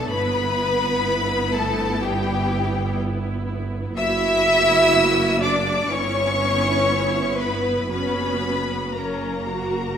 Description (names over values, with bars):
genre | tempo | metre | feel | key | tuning
classical, slow romantic movement for string orchestra | 57-63 BPM | 4/4 | rubato | unclear | A4 = 440 Hz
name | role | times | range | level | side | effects
clear chamber violin section | melody | 0.0-10.0 s | G5 to E6 | -25 LUFS | left 4 dB | none
rich chamber violin section | second line | 0.0-10.0 s | G4 to E5 | -23 LUFS | left 1 dB | none
rich chamber viola section | accompaniment | 0.0-10.0 s | A#3 to F#4 | -26 LUFS | right 2 dB | none
rich chamber double bass section | bass | 0.0-10.0 s | F#1 to G1 | -27 LUFS | right 2 dB | none
rich studio cello section | bass | 0.0-10.0 s | G3 to E4 | -28 LUFS | right 2 dB | none
room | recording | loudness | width
moderate scoring stage reverb, RT60 2.0 s | none | -19 LUFS | side -8 dB against mid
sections
0.0-10.0 A section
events
none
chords
0.1 Em/G; 4.0 F#; 5.9 Em/G; 7.9 F#